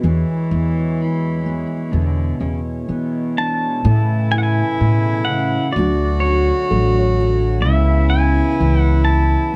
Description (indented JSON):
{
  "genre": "acoustic folk-pop ballad",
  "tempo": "63 BPM",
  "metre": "4/4",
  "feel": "straight",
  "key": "A major",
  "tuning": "A4 = 436 Hz",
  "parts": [
    { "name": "warm cello", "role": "second line", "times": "0.0-9.6 s", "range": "B2 to F#4", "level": "-24 LUFS", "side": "equal", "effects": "none" },
    { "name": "fingerpicked steel-string acoustic guitar", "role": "accompaniment", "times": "0.0-9.6 s", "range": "A2 to A4", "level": "-26 LUFS", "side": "equal", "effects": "none" },
    { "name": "pedal harmonium", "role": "sustained chords", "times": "0.0-9.6 s", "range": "C#3 to C#5", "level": "-31 LUFS", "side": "equal", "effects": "none" },
    { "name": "felt-muted upright piano", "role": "arpeggios", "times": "0.0-8.3 s", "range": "E4 to C#5", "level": "-33 LUFS", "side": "equal", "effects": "none" },
    { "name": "upright bass", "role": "bass", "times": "0.0-9.4 s", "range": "A1 to E3", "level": "-20 LUFS", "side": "equal", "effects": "none" },
    { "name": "pedal steel guitar", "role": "melody", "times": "3.4-9.6 s", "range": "C#5 to A5", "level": "-25 LUFS", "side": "equal", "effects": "none" }
  ],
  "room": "studio reverb",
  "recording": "dry, close 1970s-style studio recording",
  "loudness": "-17 LUFS",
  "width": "mono",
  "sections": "0.0-3.8 A section; 3.8-9.6 B section",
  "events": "none",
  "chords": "0.0 E; 3.8 Amaj7; 5.8 Dmaj7; 7.7 C#m7"
}